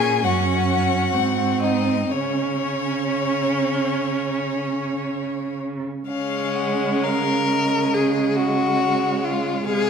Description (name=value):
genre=classical, slow romantic movement for string quartet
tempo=58-72 BPM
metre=4/4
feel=rubato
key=Db major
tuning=A4 = 440 Hz
part: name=rich violin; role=melody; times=0.0-9.9 s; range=Db5 to Ab5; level=-27 LUFS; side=left 8 dB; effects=none
part: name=rich violin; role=second line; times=0.0-9.9 s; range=Db4 to Bb4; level=-24 LUFS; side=left 4 dB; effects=none
part: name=rich viola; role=accompaniment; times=0.0-9.9 s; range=Ab3 to Db4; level=-26 LUFS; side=right 3 dB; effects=none
part: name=rich cello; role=bass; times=0.0-9.9 s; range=Gb2 to Db3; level=-24 LUFS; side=right 5 dB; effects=none
room=moderate scoring stage reverb, RT60 1.7 s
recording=none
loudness=-19 LUFS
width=side -6 dB against mid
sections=0.0-6.1 A section; 6.1-9.9 B section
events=none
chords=0.3 Gb5; 1.1 Ab7; 2.1 N.C.; 6.1 Db5